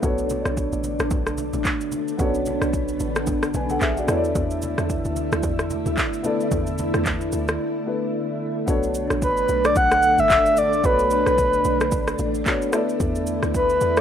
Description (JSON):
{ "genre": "amapiano", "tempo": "111 BPM", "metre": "4/4", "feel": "swing 58% on 16ths", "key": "B minor", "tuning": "A4 = 443 Hz", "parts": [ { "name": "dark grand piano", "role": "accompaniment", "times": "0.0-14.0 s", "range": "B3 to G#5", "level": "-27 LUFS", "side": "left 2 dB", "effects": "none" }, { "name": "ensemble organ-string", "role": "sustained chords", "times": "0.0-14.0 s", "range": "D3 to E4", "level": "-26 LUFS", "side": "equal", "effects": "ensemble chorus, sidechain pumping" }, { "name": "deep log drum bass", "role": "bass", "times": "0.0-14.0 s", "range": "F#1 to E2", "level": "-28 LUFS", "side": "equal", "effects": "none" }, { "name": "afro-pop drum kit", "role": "drums", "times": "0.0-14.0 s", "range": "handclaps, kick drum, rim click, shaker", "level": "-25 LUFS", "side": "equal", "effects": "none" }, { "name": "congas", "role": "percussion", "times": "0.0-7.5 s", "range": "none", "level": "-35 LUFS", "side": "right 2 dB", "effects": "none" }, { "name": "breathy flute-like synth lead", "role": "melody", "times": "9.2-14.0 s", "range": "B4 to F#5", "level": "-18 LUFS", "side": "equal", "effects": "chorus, tremolo, tape echo" } ], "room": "little or no reverb", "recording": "rough home demo mix", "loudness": "-19 LUFS", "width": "side -9 dB against mid", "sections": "0.0-8.7 A section; 8.7-14.0 B section", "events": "break 7.6-8.7; drop 8.7-14.0", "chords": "0.0 Bm9; 4.1 E7sus4; 8.7 Bm9; 12.7 E7sus4" }